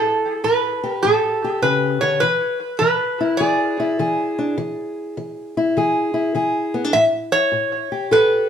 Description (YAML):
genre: acoustic country blues, solo or duo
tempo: 102 BPM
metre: 4/4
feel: swing 66% on 8ths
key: E mixolydian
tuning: A4 = 439 Hz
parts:
  - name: metal-body resonator slide guitar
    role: melody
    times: 0.0-8.5 s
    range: A4 to E5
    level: -18 LUFS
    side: right 1 dB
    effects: analog delay
  - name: fingerpicked old ladder-braced acoustic guitar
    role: accompaniment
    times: 0.0-8.5 s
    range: A2 to A4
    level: -20 LUFS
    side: left 1 dB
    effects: none
room: wet studio reverb, RT60 0.7 s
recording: heard from further back in the room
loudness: -17 LUFS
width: side -8 dB against mid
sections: 0.0-8.5 A section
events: none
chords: 0.0 A7; 2.2 E7; 6.9 A7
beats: 0.44 1.03 1.62 | 2.21 2.80 3.39 3.98 | 4.57 5.16 5.75 6.34 | 6.93 7.52 8.11